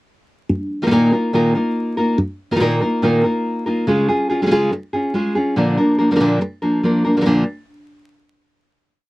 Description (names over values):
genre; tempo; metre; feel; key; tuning
flamenco; 142 BPM; 4/4; straight; unclear; A4 = 440 Hz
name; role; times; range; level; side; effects
nylon-string guitar; solo; 0.5-7.4 s; Bb2 to Bb4; -15 LUFS; equal; none
room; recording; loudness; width
moderate booth ambience, RT60 0.2 s; dry, close 1970s-style studio recording, vinyl crackle; -15 LUFS; side -19 dB against mid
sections
0.5-7.3 groove; 7.3-9.0 final chord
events
none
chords
0.5 Bbsus4; 3.9 Db; 5.6 Bb